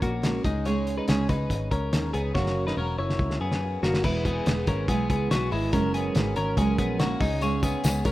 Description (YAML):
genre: jangly indie pop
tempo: 142 BPM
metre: 4/4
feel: straight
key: unclear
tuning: A4 = 440 Hz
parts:
  - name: picked steel-string acoustic guitar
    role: accompaniment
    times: 0.0-8.1 s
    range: F#2 to A#4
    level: -29 LUFS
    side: right 3 dB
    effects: none
  - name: twelve-string electric guitar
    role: arpeggios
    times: 0.0-8.1 s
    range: G#3 to C#5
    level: -29 LUFS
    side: left 3 dB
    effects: none
  - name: vintage muted picked electric bass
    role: bass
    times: 0.0-8.1 s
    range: E1 to F#2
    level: -29 LUFS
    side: equal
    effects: none
  - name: cloth-damped thuddy drum kit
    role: drums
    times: 0.0-8.1 s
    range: crash cymbal, hi-hat, kick drum, snare drum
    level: -28 LUFS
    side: equal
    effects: none
  - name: tambourine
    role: percussion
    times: 7.4-8.1 s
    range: none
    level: -39 LUFS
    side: left 2 dB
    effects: none
room: light reverb, small room ambience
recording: rough home demo mix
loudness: -23 LUFS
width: side -16 dB against mid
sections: 0.0-4.0 A section; 4.0-8.1 B section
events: drum fill 2.3-4.0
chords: 0.4 C#sus2; 2.3 F#; 4.0 E; 5.7 F#add9; 7.2 C#sus2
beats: 0.23 | 0.66 1.08 1.50 1.93 | 2.35 2.77 3.19 3.62 | 4.04 4.46 4.89 5.31 | 5.73 6.15 6.58 7.00 | 7.42 7.84